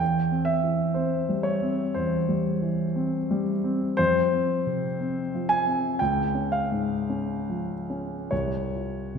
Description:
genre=classical, romantic nocturne for solo piano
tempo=47-64 BPM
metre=4/4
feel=rubato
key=F minor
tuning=A4 = 440 Hz
part: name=warm grand piano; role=solo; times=0.0-9.2 s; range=C2 to Ab5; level=-24 LUFS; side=equal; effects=none
room=wet scoring stage reverb, RT60 1.5 s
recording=minimal, uncompressed stereo recording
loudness=-24 LUFS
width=side -6 dB against mid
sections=0.0-9.2 A section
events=none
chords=0.0 C/E; 4.0 F5; 6.0 Db; 8.3 F5/C

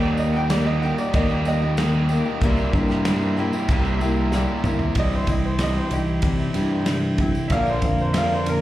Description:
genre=folk rock and heartland rock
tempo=94 BPM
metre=4/4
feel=straight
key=C mixolydian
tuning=A4 = 436 Hz
part: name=bright upright piano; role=second line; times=0.0-8.6 s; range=Eb4 to G5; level=-27 LUFS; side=right 1 dB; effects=slapback echo
part: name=picked acoustic archtop guitar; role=accompaniment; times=0.0-8.6 s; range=Bb2 to Bb4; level=-27 LUFS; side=left 2 dB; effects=slapback echo
part: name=accordion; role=sustained chords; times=0.0-8.6 s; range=G4 to D6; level=-35 LUFS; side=right 1 dB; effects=none
part: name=crunchy overdriven guitar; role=riff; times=0.0-8.6 s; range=Bb2 to G4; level=-26 LUFS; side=right 1 dB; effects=none
part: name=fingered electric bass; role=bass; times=0.0-8.6 s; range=Bb1 to C3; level=-23 LUFS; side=equal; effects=none
part: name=tambourine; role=percussion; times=0.0-8.6 s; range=none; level=-47 LUFS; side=right 1 dB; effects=none
part: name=natural country drum kit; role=drums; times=0.5-8.6 s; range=crash cymbal, kick drum, ride cymbal, snare drum, toms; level=-26 LUFS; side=equal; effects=none
room=studio ambience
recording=live gig heard through the venue's PA, club reverb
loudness=-19 LUFS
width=side -14 dB against mid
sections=0.0-5.0 A section; 5.0-8.6 B section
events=drum fill 4.3-5.0; upright piano solo 5.0-8.6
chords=0.0 Ebmaj7; 2.4 C7; 5.0 C; 7.5 Bb

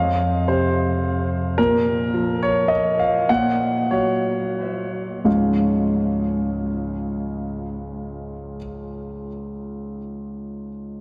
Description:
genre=neoclassical minimalist piano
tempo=84-109 BPM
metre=3/4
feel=rubato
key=Db major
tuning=A4 = 444 Hz
part: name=warm concert grand piano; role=solo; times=0.0-11.0 s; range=Db2 to Gb5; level=-22 LUFS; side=equal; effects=tape echo
room=wet cathedral reverb, RT60 4.5 s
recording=dreamy mix soaked in reverb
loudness=-21 LUFS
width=mono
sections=0.0-5.3 A section; 5.3-9.5 B section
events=slowing down 0.7-5.3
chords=0.0 F5; 1.6 Bb5; 3.3 Gb/Bb; 5.3 Dbadd9

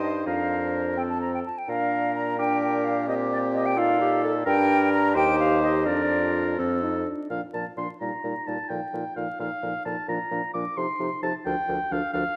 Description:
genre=quick classical-period movement for wind quintet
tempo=86 BPM (dotted quarters)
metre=6/8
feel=straight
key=Bb major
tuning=A4 = 440 Hz
part: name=concert flute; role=melody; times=0.0-12.2 s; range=A4 to Bb5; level=-30 LUFS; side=equal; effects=none
part: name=warm oboe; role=second line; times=0.0-12.4 s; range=G4 to D6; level=-32 LUFS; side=equal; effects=none
part: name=clear clarinet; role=accompaniment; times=0.0-12.2 s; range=D4 to Eb5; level=-34 LUFS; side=equal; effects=none
part: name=mellow French horn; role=accompaniment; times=0.0-12.2 s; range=F3 to Eb4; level=-32 LUFS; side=equal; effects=none
part: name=clear bassoon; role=bass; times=0.0-12.2 s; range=D2 to C3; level=-32 LUFS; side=equal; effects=none
room=moderate scoring stage reverb, RT60 1.7 s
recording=dark, warm production, vinyl crackle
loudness=-25 LUFS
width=mono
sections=0.0-7.3 A section; 7.3-12.4 B section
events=none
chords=0.3 Fsus4; 1.0 F; 1.7 Bb; 3.1 C5/Bb; 3.8 F7/Bb; 4.5 Gm; 5.2 Cm/Eb; 5.9 Bb/F; 6.6 F; 7.3 Bb; 8.0 Eb/Bb; 8.7 F7/Bb; 10.1 Bb; 10.8 F7/C; 11.5 Bb/D (rootless)

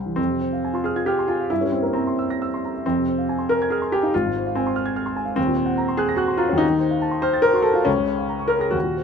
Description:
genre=classical, romantic character piece for solo piano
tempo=117-147 BPM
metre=3/4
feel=rubato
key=F minor, Bb minor from 5.4 s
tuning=A4 = 441 Hz
part: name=warm upright piano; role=solo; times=0.0-9.0 s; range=Ab1 to Bb6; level=-19 LUFS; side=equal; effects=none
room=little or no reverb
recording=close, detailed microphones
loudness=-19 LUFS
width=side -6 dB against mid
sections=0.2-9.0 A section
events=none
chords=0.2 Fm; 1.5 C7/G; 2.8 Fm; 4.1 Fm/Ab; 5.4 Cm7b5/Eb; 6.6 F7/Eb; 7.9 Bbm/Db

